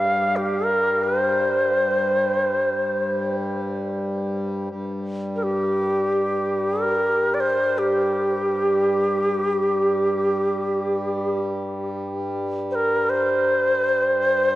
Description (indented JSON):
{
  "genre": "world meditative, free-time meditation music",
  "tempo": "free time",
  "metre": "none",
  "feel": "none",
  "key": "G minor pentatonic",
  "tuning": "A4 = 440 Hz",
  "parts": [
    { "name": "bright Native American-style cedar flute", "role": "melody", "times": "0.0-14.6 s", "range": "G4 to F5", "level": "-20 LUFS", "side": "equal", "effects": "none" },
    { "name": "hand-pumped harmonium", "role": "drone", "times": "0.0-14.6 s", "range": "G2 to G3", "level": "-27 LUFS", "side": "equal", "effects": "none" },
    { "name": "bronze singing bowl", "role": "texture", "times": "0.0-1.6 s", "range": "G3", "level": "-43 LUFS", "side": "right 1 dB", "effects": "none" }
  ],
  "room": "wet cathedral reverb, RT60 4.8 s",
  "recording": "worn, warbling old tape, cassette tape, warbly pitch drift",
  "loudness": "-20 LUFS",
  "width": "side -15 dB against mid",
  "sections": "0.0-14.6 A section",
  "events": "none",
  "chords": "none",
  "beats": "free time"
}